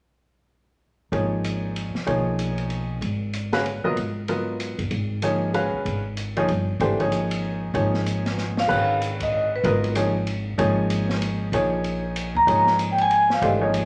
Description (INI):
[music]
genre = modal jazz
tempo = 190 BPM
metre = 3/4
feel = swing 61% on 8ths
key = G# dorian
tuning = A4 = 440 Hz
[part]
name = clear baby grand piano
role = accompaniment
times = 1.1-13.8 s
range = D#3 to E#5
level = -27 LUFS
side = equal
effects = none
[part]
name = upright bass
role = bass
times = 1.1-13.8 s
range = F#1 to D#2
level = -30 LUFS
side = equal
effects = none
[part]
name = open jazz drum kit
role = drums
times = 1.1-13.8 s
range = crash cymbal, hi-hat, kick drum, ride cymbal, snare drum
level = -36 LUFS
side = equal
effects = none
[part]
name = vibraphone with medium hard mallets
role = melody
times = 8.6-9.9, 12.4-13.7 s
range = A#4 to A#5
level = -22 LUFS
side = equal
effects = none
[sound]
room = wet large studio reverb, RT60 1.0 s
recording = none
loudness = -24 LUFS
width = mono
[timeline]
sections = 1.1-8.7 A section; 8.7-13.8 B section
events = drum fill 8.4-8.7; band accent 9.2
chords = 1.1 G#m69; 3.0 F#add9/G#; 4.9 G#m69; 6.8 A#m11/G#; 8.7 G#m69; 10.6 C#69/G#; 12.5 G#sus2